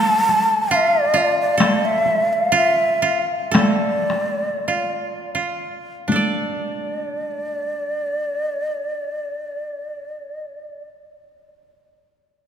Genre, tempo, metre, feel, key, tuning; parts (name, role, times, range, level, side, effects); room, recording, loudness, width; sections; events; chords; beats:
japanese traditional, Japanese chamber music; 40-70 BPM; 2/4; rubato; D minor; A4 = 441 Hz
breathy hollow shakuhachi; melody; 0.0-10.9 s; D5 to A5; -21 LUFS; equal
koto; second line; 0.0-10.9 s; D4 to D5; -22 LUFS; right 1 dB
taiko ensemble; percussion; 0.3-6.8 s; -22 LUFS; left 1 dB
wet church reverb, RT60 3.3 s; -18 LUFS; side -8 dB against mid
0.0-6.1 A section; 6.1-11.8 B section
slowing down 1.6-6.1
0.72 | 1.60 2.53 | 3.54 4.69 | 6.09 7.56 | 8.96 10.34